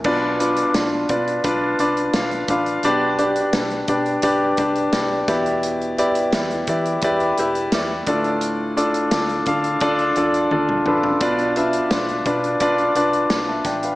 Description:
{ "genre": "piano-driven pop", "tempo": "86 BPM", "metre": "4/4", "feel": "straight", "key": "unclear", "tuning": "A4 = 440 Hz", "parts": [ { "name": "warm concert grand piano", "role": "accompaniment", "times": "0.0-14.0 s", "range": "A2 to A5", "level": "-18 LUFS", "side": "left 1 dB", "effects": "slapback echo" }, { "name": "natural country drum kit", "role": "drums", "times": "0.0-14.0 s", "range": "crash cymbal, hi-hat, kick drum, snare drum, toms", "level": "-26 LUFS", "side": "equal", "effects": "none" }, { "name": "vintage muted fingered electric bass", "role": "bass", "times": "0.1-13.9 s", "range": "E1 to E3", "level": "-35 LUFS", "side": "equal", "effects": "none" } ], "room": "wet lush hall reverb, RT60 2.0 s, studio ambience", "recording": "big arena sound, small speaker sound", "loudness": "-17 LUFS", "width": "side -18 dB against mid", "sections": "0.0-14.0 A section", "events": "drum fill 10.5-11.2", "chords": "0.0 Bdim; 2.8 G/B; 5.3 Em7; 8.1 Dm; 11.2 Bdim", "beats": "| 0.05 0.75 1.45 2.14 | 2.84 3.54 4.24 4.93 | 5.63 6.33 7.03 7.72 | 8.42 9.12 9.82 10.51 | 11.21 11.91 12.61 13.30" }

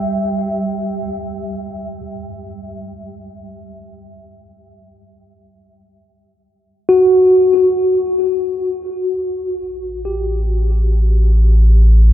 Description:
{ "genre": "ambient", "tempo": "free time", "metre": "none", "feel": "none", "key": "unclear", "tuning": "A4 = 440 Hz", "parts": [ { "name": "mellow tine electric piano", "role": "arpeggios", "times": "0.0-12.1 s", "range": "F#4 to E5", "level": "-16 LUFS", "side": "left 1 dB", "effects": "medium stereo tremolo, diffuse ambient delay" }, { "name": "deep rumbling drone", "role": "bass", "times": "10.1-12.1 s", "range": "A1", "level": "-12 LUFS", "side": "equal", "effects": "built-in reverb" } ], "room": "wet huge ambient reverb, RT60 7.6 s", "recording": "dark, warm production", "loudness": "-13 LUFS", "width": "side -12 dB against mid", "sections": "0.0-8.9 A section; 8.9-12.1 B section", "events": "none", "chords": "0.0 Em/G; 2.0 N.C.; 8.9 A5", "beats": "free time" }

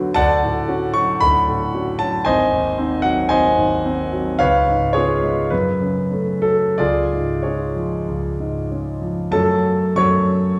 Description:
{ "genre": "classical, romantic character piece for solo piano", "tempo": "83-117 BPM", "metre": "4/4", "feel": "rubato", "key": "F# minor", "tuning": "A4 = 440 Hz", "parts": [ { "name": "clear concert grand piano", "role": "solo", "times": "0.0-10.6 s", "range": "G#1 to C#6", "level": "-19 LUFS", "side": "equal", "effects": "none" } ], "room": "wet recital hall reverb, RT60 1.4 s", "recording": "recorded in a church or concert hall", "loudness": "-19 LUFS", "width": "mono", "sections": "0.0-9.3 A section; 9.3-10.6 B section", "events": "none", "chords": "0.2 Dmaj7; 2.3 G#7; 4.4 C#7; 5.5 F#m; 6.8 C#; 9.3 F#m", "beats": "| 0.16 0.69 1.22 1.74 | 2.26 2.77 3.31 3.86 | 4.41 4.96 5.52 6.11 | 6.79 7.44 8.07 8.70 | 9.33 9.98" }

